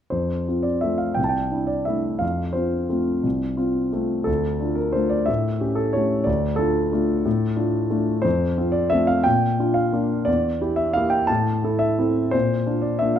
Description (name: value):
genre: classical, piano waltz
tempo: 166-194 BPM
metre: 3/4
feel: rubato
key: F major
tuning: A4 = 440 Hz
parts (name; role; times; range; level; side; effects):
- warm concert grand piano; solo; 0.1-13.2 s; C2 to A5; -20 LUFS; equal; none
room: moderate recital hall reverb, RT60 1.7 s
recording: close, detailed microphones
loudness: -20 LUFS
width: side -9 dB against mid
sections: 0.1-13.2 A section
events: none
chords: 0.1 F; 1.2 C69; 2.2 F; 4.3 Dm; 5.3 A7; 6.3 Dm; 8.2 F; 9.2 Bb; 10.3 Em7b5; 11.3 Am; 12.3 Bb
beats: | 0.12 0.47 0.83 | 1.18 1.53 1.88 | 2.22 2.55 2.90 | 3.24 3.58 3.93 | 4.27 4.61 4.95 | 5.28 5.61 5.94 | 6.27 6.59 6.93 | 7.25 7.57 7.91 | 8.24 8.57 8.91 | 9.25 9.58 9.93 | 10.27 10.61 10.96 | 11.29 11.63 11.99 | 12.34 12.67 13.01